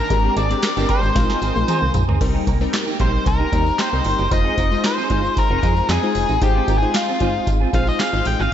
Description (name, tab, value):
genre	early-eighties boogie funk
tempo	114 BPM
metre	4/4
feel	straight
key	unclear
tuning	A4 = 440 Hz
part	octave-fuzz lead guitar	melody	0.0-8.5 s	F4 to G5	-22 LUFS	left 2 dB	distortion, slapback echo
part	semi-hollow electric guitar	riff	0.0-8.5 s	Bb3 to Bb4	-27 LUFS	right 7 dB	ensemble chorus, slapback echo
part	funky polysynth comp	accompaniment	0.1-8.4 s	G3 to C5	-24 LUFS	left 2 dB	chorus, slapback echo
part	metallic FM bass	bass	0.1-8.5 s	F1 to F2	-22 LUFS	equal	none
part	booming analog drum machine	drums	0.1-8.4 s	crash cymbal, handclaps, hi-hat, kick drum, snare drum, toms	-22 LUFS	equal	none
part	tambourine	percussion	0.1-8.5 s	none	-38 LUFS	right 7 dB	none
room	moderate lush hall reverb, RT60 2.3 s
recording	big arena sound, nothing above 7.8 kHz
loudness	-16 LUFS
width	side -10 dB against mid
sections	0.0-2.2 A section; 2.2-8.5 B section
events	drum fill 1.2-2.2; lead electric guitar solo 2.2-8.5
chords	0.1 Abmaj9#11; 1.2 Bb9sus4; 2.2 Cm7; 4.3 Fm7; 6.4 Ab6